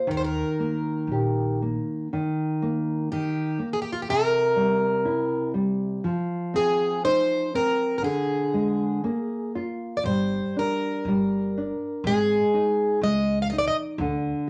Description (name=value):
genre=fado-style ballad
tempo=60 BPM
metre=2/4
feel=rubato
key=Eb major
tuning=A4 = 440 Hz
part: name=picked plugged-in twelve-string acoustic guitar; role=melody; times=0.0-13.8 s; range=F4 to F5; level=-27 LUFS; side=equal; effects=none
part: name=nylon-string guitar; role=accompaniment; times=0.0-14.5 s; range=C3 to G4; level=-28 LUFS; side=equal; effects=none
part: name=upright bass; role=bass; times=0.1-1.7, 10.0-14.3 s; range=G1 to Eb2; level=-34 LUFS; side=equal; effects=none
room=moderate studio reverb, RT60 0.6 s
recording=none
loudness=-25 LUFS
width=mono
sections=0.0-2.1 A section; 2.1-14.5 A section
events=none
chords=0.1 Eb; 2.1 Eb5; 4.1 C7; 6.0 F5; 8.0 N.C.; 9.0 Bb5; 10.1 Gm; 12.1 Ab5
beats=| 0.09 1.09 | 2.12 3.11 | 4.08 5.05 | 6.03 7.03 | 8.03 9.04 | 10.05 11.07 | 12.05 13.03 | 14.00